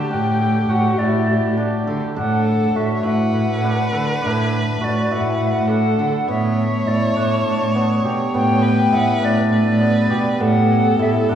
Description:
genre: contemporary instrumental, chamber music in an uneven meter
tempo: 204 BPM (eighths)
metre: 7/8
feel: straight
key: A mixolydian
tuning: A4 = 440 Hz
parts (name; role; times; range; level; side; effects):
- wooden flute; melody; 0.0-11.3 s; D5 to A5; -23 LUFS; left 2 dB; none
- warm viola; second line; 0.0-11.3 s; G4 to C#5; -25 LUFS; equal; none
- cimbalom; arpeggios; 0.0-11.3 s; B3 to A4; -23 LUFS; equal; none
- rich cello; bass; 0.1-11.3 s; A2 to D3; -19 LUFS; right 1 dB; none
room: wet recital hall reverb, RT60 1.5 s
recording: heard from further back in the room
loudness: -16 LUFS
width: side -9 dB against mid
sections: 0.0-11.3 A section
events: none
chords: 0.0 A7sus4; 6.3 G/A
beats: | 0.10 0.40 0.69 0.98 1.28 1.57 1.87 | 2.16 2.46 2.75 3.04 3.34 3.63 3.93 | 4.22 4.51 4.81 5.10 5.40 5.69 5.99 | 6.28 6.58 6.87 7.17 7.46 7.75 8.05 | 8.34 8.64 8.93 9.23 9.52 9.82 10.11 | 10.41 10.70 11.00 11.29

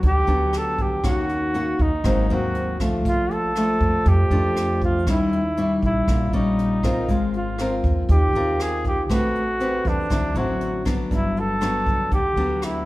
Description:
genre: bossa nova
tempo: 119 BPM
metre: 4/4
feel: straight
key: unclear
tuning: A4 = 440 Hz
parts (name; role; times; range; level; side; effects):
- nylon-string guitar; accompaniment; 0.0-12.9 s; F2 to B4; -24 LUFS; left 1 dB; none
- upright bass; bass; 0.0-12.9 s; G1 to F2; -24 LUFS; equal; none
- jazz brush drum kit; drums; 0.0-12.7 s; hi-hat, kick drum, rim click; -26 LUFS; equal; none
- warm flugelhorn; melody; 0.1-12.9 s; D4 to A4; -24 LUFS; right 1 dB; none
room: moderate recital hall reverb, RT60 1.4 s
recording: recorded in a church or concert hall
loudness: -19 LUFS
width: side -18 dB against mid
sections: 0.0-12.9 A section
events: none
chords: 0.0 Gmaj7; 1.0 Ebm7; 2.0 Ab9; 3.1 Bbmaj7; 5.1 Eb7b9; 7.1 Ab69; 9.1 Am9; 10.1 D9; 11.1 Gmaj7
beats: 0.03 0.54 | 1.04 1.54 2.05 2.55 | 3.05 3.56 4.06 4.56 | 5.07 5.57 6.07 6.58 | 7.08 7.58 8.09 8.59 | 9.09 9.60 10.10 10.60 | 11.11 11.61 12.11 12.62

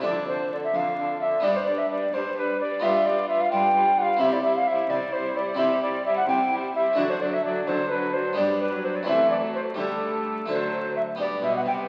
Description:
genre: classical, baroque-style concerto movement with solo episodes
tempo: 86 BPM (dotted quarters)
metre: 6/8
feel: straight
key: C major, G major from 5.6 s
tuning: A4 = 441 Hz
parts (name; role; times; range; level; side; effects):
- dark chamber violin section; melody; 0.0-11.9 s; A4 to C5; -40 LUFS; equal; none
- mellow alto recorder; melody; 0.0-11.7 s; A4 to G5; -26 LUFS; equal; none
- rich chamber violin section; second line; 0.0-11.9 s; A3 to F4; -37 LUFS; equal; none
- dark chamber viola section; accompaniment; 0.0-11.9 s; D3 to G3; -35 LUFS; equal; none
- harpsichord; accompaniment; 0.0-11.9 s; F2 to A4; -33 LUFS; equal; none
- rich chamber cello section; bass; 0.0-11.9 s; F2 to D3; -38 LUFS; equal; none
room: wet recital hall reverb, RT60 1.4 s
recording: very old 78 rpm record, vinyl crackle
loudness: -24 LUFS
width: mono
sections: 0.0-11.2 A section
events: none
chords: 0.0 Dm/F; 1.4 G; 2.8 G7; 4.2 C; 7.0 D; 8.4 G; 9.1 Am/C; 9.8 Dsus4; 10.5 D; 11.2 G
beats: | 0.03 0.73 | 1.43 2.13 | 2.83 3.52 | 4.21 4.90 | 5.60 6.29 | 6.98 7.67 | 8.37 9.07 | 9.78 10.49 | 11.19

